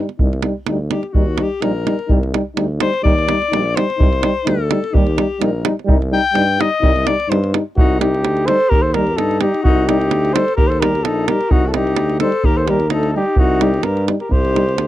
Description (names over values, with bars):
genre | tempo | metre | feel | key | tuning
balkan folk, Balkan brass band | 128 BPM | 2/4 | swing 53% on 16ths | C dorian sharp4 | A4 = 441 Hz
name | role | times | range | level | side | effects
clear euphonium | accompaniment | 0.0-14.6 s | Eb4 | -22 LUFS | left 6 dB | none
mellow euphonium | accompaniment | 0.0-14.6 s | G3 | -22 LUFS | right 3 dB | none
davul | percussion | 0.1-14.9 s | none | -17 LUFS | right 1 dB | none
warm tuba | bass | 0.2-14.9 s | Bb1 to G2 | -21 LUFS | equal | none
warm alto saxophone | second line | 0.9-14.9 s | Eb4 to G5 | -20 LUFS | left 6 dB | none
mellow flugelhorn | melody | 7.8-14.9 s | F#4 to C5 | -19 LUFS | equal | none
room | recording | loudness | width
little or no reverb | dry, close 1970s-style studio recording | -14 LUFS | side -14 dB against mid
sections
0.2-7.8 A section; 7.8-14.9 B section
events
alto saxophone solo 0.2-7.8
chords
0.2 Cm; 1.1 Eb; 2.1 Cm; 3.0 Eb; 4.0 Cm; 4.9 Eb; 5.9 Cm; 8.7 Eb; 9.6 Cm; 10.6 Eb; 11.5 Cm; 12.4 Eb; 13.4 Cm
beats
| 0.20 0.67 | 1.15 1.62 | 2.10 2.57 | 3.05 3.52 | 4.00 4.47 | 4.94 5.41 | 5.89 6.36 | 6.83 7.30 | 7.77 8.24 | 8.71 9.18 | 9.64 10.11 | 10.58 11.05 | 11.51 11.98 | 12.45 12.91 | 13.38 13.84 | 14.31 14.77